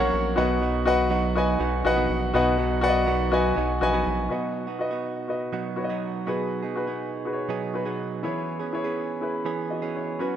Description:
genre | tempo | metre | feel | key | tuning
pop | 122 BPM | 4/4 | straight | B major | A4 = 440 Hz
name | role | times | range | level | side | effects
clear baby grand piano | accompaniment | 0.0-10.4 s | B2 to G#5 | -25 LUFS | left 3 dB | none
direct-recorded clean electric guitar | riff | 0.0-10.4 s | B2 to G#4 | -29 LUFS | right 8 dB | spring reverb
round analog bass | bass | 0.0-4.3 s | A#1 to B1 | -28 LUFS | equal | none
room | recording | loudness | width
moderate plate reverb, RT60 3.0 s | rough home demo mix | -23 LUFS | side -10 dB against mid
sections
0.0-4.3 A section; 4.3-10.4 B section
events
none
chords
0.4 B; 6.3 G#m7/B; 8.2 E6

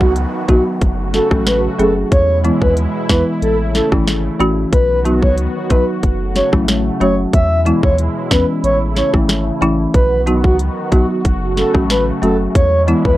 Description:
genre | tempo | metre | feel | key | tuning
dancehall | 92 BPM | 4/4 | straight | F# dorian | A4 = 440 Hz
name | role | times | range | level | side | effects
breathy flute-like synth lead | melody | 0.0-13.2 s | F#4 to E5 | -18 LUFS | equal | chorus, analog delay
lush unison pad | sustained chords | 0.0-13.2 s | B2 to F#4 | -23 LUFS | right 1 dB | chorus, phaser, sidechain pumping
punchy sub bass | bass | 0.0-13.2 s | F#1 to E2 | -19 LUFS | equal | none
island pop drum kit | drums | 0.0-13.2 s | hi-hat, kick drum, rim click, snare drum | -15 LUFS | equal | none
downlifter | sound effects | 0.0-2.1 s | none | -34 LUFS | left 2 dB | none
folk marimba with medium mallets | accompaniment | 0.5-13.0 s | E3 to A4 | -18 LUFS | equal | none
room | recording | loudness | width
little or no reverb | dry, gritty hardware recording | -12 LUFS | side -15 dB against mid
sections
0.0-13.2 A section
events
none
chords
0.0 B; 0.8 F#m; 2.1 E; 3.4 A; 4.7 B; 6.0 F#m; 7.3 E; 8.6 A; 9.9 B; 11.2 F#m; 12.6 E

